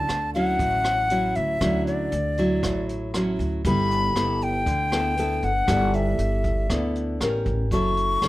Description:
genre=bossa nova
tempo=118 BPM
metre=4/4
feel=straight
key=D major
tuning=A4 = 440 Hz
part: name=reedy concert flute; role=melody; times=0.0-8.3 s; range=D5 to C#6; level=-24 LUFS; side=left 2 dB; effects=none
part: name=nylon-string guitar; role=accompaniment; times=0.0-8.3 s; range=A2 to Bb4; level=-26 LUFS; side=equal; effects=none
part: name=upright bass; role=bass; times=0.0-8.3 s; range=F#1 to D2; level=-27 LUFS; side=right 1 dB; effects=none
part: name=jazz brush drum kit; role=drums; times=0.1-8.3 s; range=hi-hat, kick drum, rim click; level=-31 LUFS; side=equal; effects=none
room=little or no reverb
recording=close, detailed microphones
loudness=-21 LUFS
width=side -16 dB against mid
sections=0.0-8.3 A section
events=none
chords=0.0 Dmaj9; 3.6 G69; 7.2 A7b9; 7.7 Dmaj9/F# (rootless)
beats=0.09 0.60 1.11 | 1.62 2.12 2.63 3.14 | 3.65 4.16 4.67 5.17 | 5.68 6.19 6.70 7.21 | 7.72 8.23

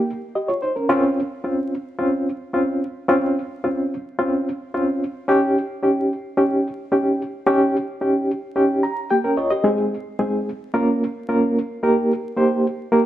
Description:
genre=soul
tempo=110 BPM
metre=4/4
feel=straight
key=unclear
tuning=A4 = 440 Hz
part: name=reed electric piano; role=solo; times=0.0-13.1 s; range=Ab3 to Bb5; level=-18 LUFS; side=equal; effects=tremolo
room=wet stone room reverb, RT60 1.3 s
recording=band playing live in one room, vinyl crackle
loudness=-19 LUFS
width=side -12 dB against mid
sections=0.9-9.7 A section; 9.7-13.1 B section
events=reed electric piano fill 8.6-9.7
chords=0.0 Eb; 0.9 Dbmaj7; 5.3 Eb7; 9.7 Ab; 10.7 Bbm; 11.8 Eb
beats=0.36 | 0.91 1.46 2.00 2.55 | 3.10 3.65 4.19 4.74 | 5.29 5.83 6.38 6.93 | 7.47 8.02 8.56 9.11 | 9.65 10.20 10.74 11.29 | 11.84 12.38 12.93

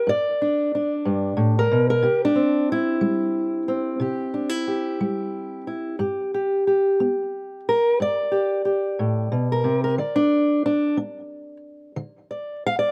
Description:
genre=acoustic country blues, solo or duo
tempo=61 BPM (dotted quarters)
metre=12/8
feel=straight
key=unclear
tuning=A4 = 441 Hz
part: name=fingerpicked steel-string acoustic guitar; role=solo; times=0.0-12.9 s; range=G2 to F5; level=-23 LUFS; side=equal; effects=none
room=light reverb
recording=recorded outdoors, with no room sound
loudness=-22 LUFS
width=mono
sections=0.0-12.9 A section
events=none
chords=0.0 G; 2.1 C; 6.0 G; 10.0 N.C.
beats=0.08 1.07 | 2.06 3.04 4.03 5.02 | 6.01 7.00 8.00 8.99 | 9.98 10.97 11.96

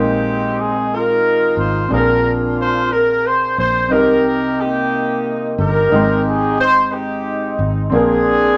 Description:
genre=slow gospel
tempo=60 BPM (dotted quarters)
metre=6/8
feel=straight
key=unclear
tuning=A4 = 440 Hz
part: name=warm horn section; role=melody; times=0.0-8.6 s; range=Bb3 to C5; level=-18 LUFS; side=equal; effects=none
part: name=clear concert grand piano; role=accompaniment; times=0.0-8.6 s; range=Ab2 to G5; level=-21 LUFS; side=equal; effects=none
part: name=fingered electric bass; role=bass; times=0.0-8.6 s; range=G1 to C2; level=-24 LUFS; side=equal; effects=none
room=wet small room reverb, RT60 0.5 s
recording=none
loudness=-16 LUFS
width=mono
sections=0.0-8.6 A section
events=none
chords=0.0 Ab69; 1.9 Bb9; 3.9 Cm7; 5.9 Abmaj7; 7.9 Bb9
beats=0.91 | 1.91 2.91 | 3.92 4.92 | 5.92 6.92 | 7.92

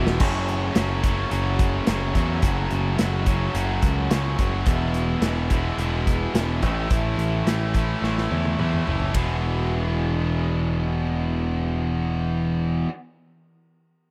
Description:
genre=classic rock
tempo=107 BPM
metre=4/4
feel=straight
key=E major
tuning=A4 = 440 Hz
part: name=biting overdriven guitar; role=riff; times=0.0-12.9 s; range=E2 to A3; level=-29 LUFS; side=equal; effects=none
part: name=tight distorted guitar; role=riff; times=0.0-12.9 s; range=E2 to G#4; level=-32 LUFS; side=equal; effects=distortion
part: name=growling picked electric bass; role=bass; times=0.0-12.8 s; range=E1 to E2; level=-27 LUFS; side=equal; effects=overdrive
part: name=big rock drum kit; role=drums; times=0.1-9.3 s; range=crash cymbal, hi-hat, kick drum, ride cymbal, snare drum, toms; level=-27 LUFS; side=equal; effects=none
room=small room ambience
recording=dry, close 1970s-style studio recording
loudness=-23 LUFS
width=mono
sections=0.2-9.1 A section; 9.1-11.4 B section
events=drum fill 0.0, 8.0-9.1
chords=0.2 F#m; 4.7 E; 6.6 A; 9.1 E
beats=| 0.21 0.77 1.32 1.88 | 2.44 3.00 3.56 4.11 | 4.67 5.23 5.79 6.35 | 6.91 7.47 8.03 8.59 | 9.15 9.71 10.27 10.83

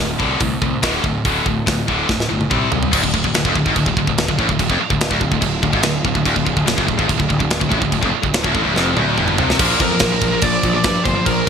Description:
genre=heavy metal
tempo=144 BPM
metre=4/4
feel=straight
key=D minor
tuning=A4 = 440 Hz
part: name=heavy high-gain guitar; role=riff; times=0.0-11.5 s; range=D2 to C4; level=-21 LUFS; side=right 11 dB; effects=distortion
part: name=tight distorted guitar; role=riff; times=0.0-11.5 s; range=D2 to C4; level=-21 LUFS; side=left 12 dB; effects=distortion
part: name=fuzz picked electric bass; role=bass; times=0.0-11.4 s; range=D1 to G2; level=-23 LUFS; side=equal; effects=overdrive
part: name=tight metal drum kit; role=drums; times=0.2-11.5 s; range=crash cymbal, hi-hat, kick drum, snare drum, toms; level=-19 LUFS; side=equal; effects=gated reverb
part: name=clear studio string section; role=sustained chords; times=2.9-11.5 s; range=D3 to D5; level=-29 LUFS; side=equal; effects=none
part: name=high-gain lead guitar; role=melody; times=9.8-11.5 s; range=Bb4 to D5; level=-20 LUFS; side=right 1 dB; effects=distortion
room=light reverb, small room ambience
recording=bright 1980s-style digital production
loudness=-15 LUFS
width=side -7 dB against mid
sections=0.0-2.9 A section; 2.9-9.6 B section; 9.6-11.5 C section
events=drum fill 2.1-2.9, 8.8-9.6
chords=0.0 D5; 2.5 C5; 2.9 Dm; 9.6 Bb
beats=0.41 0.83 | 1.25 1.67 2.09 2.51 | 2.92 3.34 3.76 4.18 | 4.59 5.01 5.43 5.84 | 6.26 6.68 7.09 7.51 | 7.92 8.34 8.76 9.18 | 9.59 10.01 10.43 10.84 | 11.26

